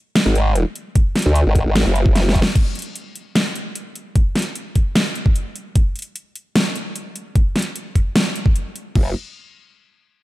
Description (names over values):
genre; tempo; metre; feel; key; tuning
heavy wobble dubstep; 150 BPM; 4/4; half-time; unclear; A4 = 441 Hz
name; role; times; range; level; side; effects
dubstep drum kit; drums; 0.2-9.0 s; crash cymbal, hi-hat, snare drum; -20 LUFS; equal; none
formant-sweep wobble bass; bass; 0.3-2.4, 9.0-9.1 s; F#1 to D2; -16 LUFS; equal; chorus, overdrive
electronic kick drum; drums; 1.0-9.0 s; none; -16 LUFS; equal; none
room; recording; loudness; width
little or no reverb; dark, warm production; -16 LUFS; side -17 dB against mid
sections
0.0-2.6 A section; 2.6-9.0 B section; 9.0-10.2 C section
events
drop 0.0-2.6; drum fill 2.2-2.6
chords
none